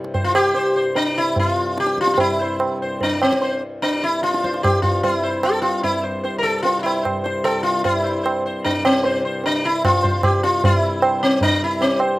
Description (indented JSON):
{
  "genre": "indian classical, Hindustani",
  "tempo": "149 BPM",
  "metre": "7/4",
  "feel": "straight",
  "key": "C raga khamaj",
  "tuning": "A4 = 440 Hz",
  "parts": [
    { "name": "hand-pumped harmonium", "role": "drone", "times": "0.0-12.2 s", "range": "C2 to G2", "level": "-28 LUFS", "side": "left 1 dB", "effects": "none" },
    { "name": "tabla", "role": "percussion", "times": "0.0-12.1 s", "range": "none", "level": "-22 LUFS", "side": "right 2 dB", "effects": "none" },
    { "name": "sitar", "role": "melody", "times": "0.1-12.2 s", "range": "C4 to C5", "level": "-19 LUFS", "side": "equal", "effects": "none" }
  ],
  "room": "little or no reverb",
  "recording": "recorded outdoors, with no room sound",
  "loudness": "-17 LUFS",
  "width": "side -18 dB against mid",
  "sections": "0.0-7.9 A section; 7.9-12.2 B section",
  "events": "speeding up 0.0-12.2",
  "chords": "none"
}